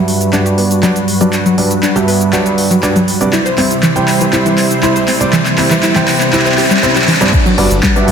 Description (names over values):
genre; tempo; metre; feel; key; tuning
progressive house; 120 BPM; 4/4; straight; G major; A4 = 437 Hz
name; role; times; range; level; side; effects
warm analog pad; sustained chords; 0.0-8.1 s; G2 to C5; -18 LUFS; equal; chorus, sidechain pumping
analog pluck; arpeggios; 0.0-7.9 s; E3 to C5; -15 LUFS; left 1 dB; chorus, sidechain pumping, ping-pong delay
warm concert grand piano; stabs; 0.0-8.1 s; G2 to G5; -15 LUFS; right 3 dB; sidechain pumping, low-pass filter, ping-pong delay
riser; sound effects; 2.5-7.3 s; none; -24 LUFS; equal; none
deep house drum kit; drums; 0.1-8.1 s; crash cymbal, handclaps, hi-hat, shaker; -16 LUFS; equal; high-pass filter on perc, small room ambience, high-pass filter on snare, high-pass filter on hats, high-pass filter on cymbals
electronic kick drum; drums; 7.3-7.9 s; none; -13 LUFS; equal; small room ambience
fat analog bass; bass; 7.6-8.1 s; G1 to G2; -14 LUFS; left 1 dB; sidechain pumping
room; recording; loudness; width
wet scoring stage reverb, RT60 1.7 s; dense, heavily limited modern master; -9 LUFS; side -7 dB against mid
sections
0.0-7.3 A section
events
build-up 0.0-7.3; drum fill 0.0-7.3; filter sweep on grand piano 0.0-7.3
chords
0.0 Gmaj7; 3.3 C; 7.3 Gmaj7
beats
0.33 0.83 | 1.33 1.83 2.33 2.83 | 3.33 3.83 4.33 4.83 | 5.33 5.83 6.33 6.83 | 7.33 7.83